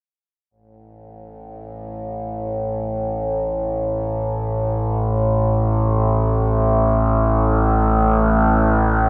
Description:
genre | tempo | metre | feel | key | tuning
ambient | free time | none | none | unclear | A4 = 440 Hz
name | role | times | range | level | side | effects
overtone-sweeping drone | drone | 1.5-9.1 s | A1 to A2 | -20 LUFS | equal | chorus, built-in reverb
room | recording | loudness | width
wet huge ambient reverb, RT60 8.2 s | none | -19 LUFS | mono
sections
0.5-9.1 A section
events
fade-in on synth drone 0.5-9.1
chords
none

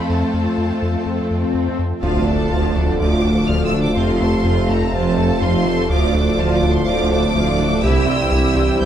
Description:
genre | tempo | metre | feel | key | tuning
cinematic, hybrid orchestral and electronic film score | 124 BPM | 4/4 | straight | D minor | A4 = 440 Hz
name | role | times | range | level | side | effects
rich symphonic violin section | melody | 0.0-8.9 s | A5 to G6 | -26 LUFS | left 2 dB | none
warm symphonic violin section | second line | 0.0-8.9 s | E4 to A5 | -28 LUFS | left 2 dB | none
rich symphonic viola section | accompaniment | 0.0-8.9 s | F3 to G4 | -25 LUFS | right 1 dB | none
warm analog pad | sustained chords | 0.0-8.9 s | E3 to C5 | -24 LUFS | left 1 dB | chorus
warm studio cello section | bass | 0.0-8.9 s | C2 to F2 | -24 LUFS | right 3 dB | none
round analog bass | riff | 0.1-8.9 s | C2 to F3 | -22 LUFS | left 1 dB | none
swell and impact | sound effects | 0.7-4.0 s | none | -28 LUFS | left 3 dB | none
bright trombone section | sustained chords | 2.0-8.9 s | G2 to G3 | -25 LUFS | right 3 dB | none
warm French horn section | sustained chords | 2.0-8.9 s | A3 to F4 | -26 LUFS | left 4 dB | none
clear tuba | bass | 2.0-8.9 s | F1 to D2 | -25 LUFS | right 4 dB | none
swelling detuned saw bass | bass | 2.0-8.9 s | D1 to C2 | -26 LUFS | equal | none
warm studio double bass section | bass | 2.0-8.9 s | F1 to D2 | -26 LUFS | right 4 dB | none
room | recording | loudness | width
moderate scoring stage reverb, RT60 2.0 s | none | -15 LUFS | side -10 dB against mid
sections
0.0-2.0 A section; 2.0-8.9 B section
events
swell 0.7-2.0; impact 2.0-4.0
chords
0.0 F; 2.0 Dm; 4.0 F; 5.9 Dm; 7.8 C

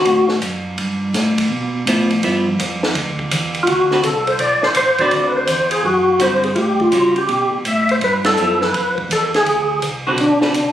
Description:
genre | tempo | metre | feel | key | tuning
soul jazz organ trio | 166 BPM | 4/4 | swing 65% on 8ths | D mixolydian | A4 = 439 Hz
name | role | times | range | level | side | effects
percussive tonewheel organ | melody | 0.0-0.3, 3.6-10.7 s | D4 to E5 | -15 LUFS | equal | slow rotary speaker, overdrive, chorus vibrato
archtop guitar, miked and amplified | accompaniment | 0.0-10.5 s | D3 to B4 | -19 LUFS | right 1 dB | none
mellow tonewheel organ | bass | 0.1-10.7 s | A1 to C#3 | -22 LUFS | equal | chorus vibrato, stopped rotary speaker
compact cocktail drum kit | drums | 0.1-10.7 s | hi-hat, kick drum, ride cymbal, snare drum | -22 LUFS | right 1 dB | none
room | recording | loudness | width
moderate studio reverb, RT60 0.5 s | recorded on a phone in the room, studio reverb, compression | -14 LUFS | side -11 dB against mid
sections
0.0-10.7 A section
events
band accent 8.2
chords
0.0 D (rootless); 0.8 G13; 3.7 D13; 6.6 A13; 8.0 G13; 9.5 D13

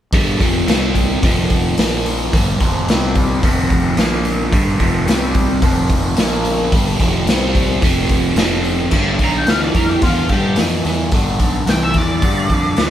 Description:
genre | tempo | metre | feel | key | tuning
blues rock power trio and southern rock | 109 BPM | 4/4 | straight | unclear | A4 = 438 Hz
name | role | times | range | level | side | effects
biting overdriven guitar | riff | 0.1-12.9 s | F2 to C4 | -18 LUFS | equal | phaser
fuzz fingered electric bass | bass | 0.1-12.9 s | F1 to G2 | -20 LUFS | equal | overdrive
raw garage drum kit | drums | 0.1-12.9 s | crash cymbal, hi-hat, kick drum, snare drum | -17 LUFS | equal | none
octave-fuzz lead guitar | melody | 9.2-12.9 s | F4 to Bb5 | -21 LUFS | equal | wah, distortion
room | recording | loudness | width
light reverb | band playing live in one room | -13 LUFS | side -11 dB against mid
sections
0.1-8.9 A section; 8.9-12.9 B section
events
lead electric guitar solo 8.9-12.9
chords
0.1 G5; 0.7 C5; 1.2 F5; 1.8 Bb5; 2.3 G5; 2.9 C5; 3.4 F5; 4.0 Bb5; 4.5 G5; 5.1 C5; 5.6 F5; 6.2 Bb5; 6.7 G5; 7.3 C5; 7.8 F5; 8.9 G

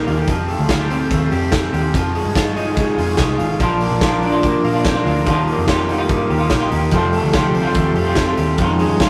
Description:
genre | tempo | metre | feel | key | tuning
jangly indie pop | 144 BPM | 4/4 | straight | unclear | A4 = 440 Hz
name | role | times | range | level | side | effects
phased analog pad | sustained chords | 0.0-9.1 s | F4 to Eb6 | -31 LUFS | equal | phaser, chorus
electric guitar through a small old amp | arpeggios | 0.0-9.1 s | Eb3 to G4 | -23 LUFS | equal | none
vintage muted picked electric bass | bass | 0.0-9.1 s | Ab1 to Bb2 | -24 LUFS | equal | none
raw garage drum kit | drums | 0.1-9.1 s | hi-hat, kick drum, ride cymbal, snare drum | -23 LUFS | equal | none
semi-hollow electric guitar | accompaniment | 3.6-9.1 s | F2 to F4 | -21 LUFS | equal | harmonic tremolo
room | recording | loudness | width
moderate stone room reverb, RT60 1.1 s | rough rehearsal-room recording, tube saturation | -17 LUFS | mono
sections
0.0-9.1 A section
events
none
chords
0.3 Fadd9; 1.9 Dbadd9/F; 3.6 Bb; 5.3 Ebadd9; 6.9 Fadd9; 8.6 Dbadd9/F

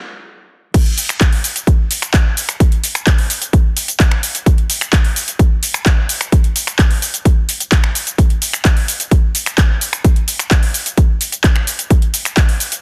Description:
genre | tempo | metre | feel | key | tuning
EDM | 129 BPM | 4/4 | straight | none | none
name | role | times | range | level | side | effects
big-room dance drum kit | drums | 0.7-12.8 s | cabasa, crash cymbal, finger snaps, handclaps, hi-hat | -20 LUFS | equal | overdrive
electronic kick drum | drums | 0.7-12.5 s | none | -14 LUFS | equal | high-pass filter on kick, high-pass filter on room
room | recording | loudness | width
digital ambience | dense, heavily limited modern master, high-pass filter | -15 LUFS | mono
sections
0.7-12.8 A section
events
stop 0.0-0.7; drop 0.7-12.8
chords
none

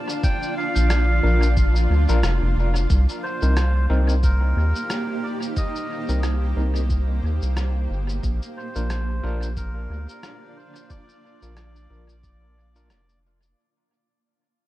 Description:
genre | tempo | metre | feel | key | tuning
ambient dub | 90 BPM | 4/4 | swing 57% on 16ths | unclear | A4 = 440 Hz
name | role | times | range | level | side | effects
granular cloud pad | sustained chords | 0.0-13.6 s | Bb3 to G5 | -30 LUFS | right 1 dB | built-in reverb
electronic cabasa and rim click | drums | 0.1-13.5 s | none | -34 LUFS | left 1 dB | dub echo
melodica | melody | 0.2-13.2 s | Bb4 to G5 | -31 LUFS | right 1 dB | dub echo
electronic kick drum | drums | 0.2-12.4 s | none | -23 LUFS | equal | none
round analog bass | bass | 0.8-13.5 s | F1 to Eb2 | -20 LUFS | equal | tube saturation
overdriven tine electric piano | stabs | 1.2-12.9 s | C4 to Bb4 | -32 LUFS | left 3 dB | fast tremolo, dub echo
room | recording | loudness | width
digital ambience | echo-heavy mix | -19 LUFS | side -16 dB against mid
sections
0.0-13.6 A section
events
fade-out 2.9-13.6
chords
0.0 Bb; 2.9 Cm7; 8.2 Bb

